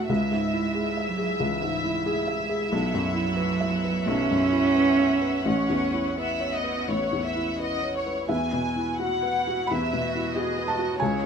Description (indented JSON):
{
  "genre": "neoclassical piano and strings",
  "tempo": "83-92 BPM",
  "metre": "4/4",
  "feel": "rubato",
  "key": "E major",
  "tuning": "A4 = 440 Hz",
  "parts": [
    { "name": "warm chamber violin section", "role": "melody", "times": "0.0-11.3 s", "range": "C#5 to G#5", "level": "-29 LUFS", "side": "left 1 dB", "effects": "none" },
    { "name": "dark cello", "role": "second line", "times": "0.0-11.3 s", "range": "E3 to G#4", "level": "-26 LUFS", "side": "right 4 dB", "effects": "none" },
    { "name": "felt-muted upright piano", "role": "accompaniment", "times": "0.0-11.3 s", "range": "A1 to B5", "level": "-27 LUFS", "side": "left 1 dB", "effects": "none" },
    { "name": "dark chamber string section", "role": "sustained chords", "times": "0.0-11.3 s", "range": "G#3 to F#5", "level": "-35 LUFS", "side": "left 4 dB", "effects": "none" }
  ],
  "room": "moderate studio ambience, RT60 0.5 s",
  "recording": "minimal, uncompressed stereo recording",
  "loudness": "-23 LUFS",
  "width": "side -7 dB against mid",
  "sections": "0.0-8.3 A section; 8.3-11.3 A section",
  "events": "none",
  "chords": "0.1 C#m; 2.7 Esus2/B; 5.5 Aadd9; 8.3 Esus2"
}